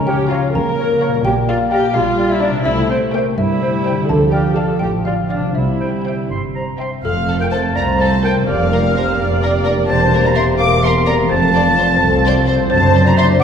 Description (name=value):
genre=cinematic, playful, whimsical film cue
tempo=85 BPM (dotted quarters)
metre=6/8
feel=straight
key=F major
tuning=A4 = 440 Hz
part: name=xylophone with rubber mallets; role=melody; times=0.0-13.4 s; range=A4 to Bb5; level=-23 LUFS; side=left 3 dB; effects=none
part: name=warm French horn section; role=sustained chords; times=0.0-13.4 s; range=F3 to G4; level=-22 LUFS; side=left 2 dB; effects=none
part: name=concert harp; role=arpeggios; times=0.0-13.4 s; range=E2 to C6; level=-22 LUFS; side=left 3 dB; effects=none
part: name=dark studio double bass section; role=bass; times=0.0-13.3 s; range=E1 to D2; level=-22 LUFS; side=right 2 dB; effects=none
part: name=warm studio cello section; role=bass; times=0.0-13.4 s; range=C2 to D3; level=-21 LUFS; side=right 3 dB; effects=none
part: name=dark clarinet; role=second line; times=0.1-6.9 s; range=C5 to D5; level=-28 LUFS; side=right 1 dB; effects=none
part: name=warm oboe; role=second line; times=0.1-13.4 s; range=F5 to D6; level=-21 LUFS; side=right 1 dB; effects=none
part: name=dark chamber viola section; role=accompaniment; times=0.1-13.4 s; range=Bb3 to D5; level=-20 LUFS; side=right 1 dB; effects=none
part: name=clear studio violin section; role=melody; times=0.3-13.3 s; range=A4 to Bb5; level=-28 LUFS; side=left 3 dB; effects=none
part: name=warm studio violin section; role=second line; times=0.3-13.3 s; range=Db5 to D6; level=-25 LUFS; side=left 2 dB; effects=none
room=wet scoring stage reverb, RT60 1.8 s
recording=heard from further back in the room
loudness=-13 LUFS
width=side -7 dB against mid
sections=0.0-7.0 A section; 7.0-13.4 B section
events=none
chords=0.0 Bbm/Db; 1.2 Gm7/Bb; 2.7 C; 4.1 Dm; 5.6 C; 7.0 F; 8.5 Gm7/F; 9.9 C7/E; 11.3 F; 12.7 D7/F#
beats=0.55 | 1.25 1.95 | 2.66 3.38 | 4.09 4.81 | 5.55 6.30 | 7.04 7.76 | 8.48 9.18 | 9.89 10.60 | 11.30 12.01 | 12.71 13.41